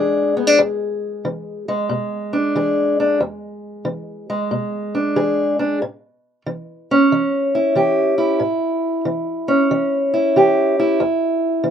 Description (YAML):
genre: blues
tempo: 92 BPM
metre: 4/4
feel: swing 66% on 8ths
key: unclear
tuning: A4 = 439 Hz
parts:
  - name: fingerpicked steel-string acoustic guitar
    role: solo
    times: 0.0-11.7 s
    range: E2 to G#4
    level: -16 LUFS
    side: equal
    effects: none
room: light reverb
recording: rough home demo mix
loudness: -16 LUFS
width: side -8 dB against mid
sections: 0.0-11.7 A section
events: none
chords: 0.0 E7; 5.8 A7; 11.0 N.C.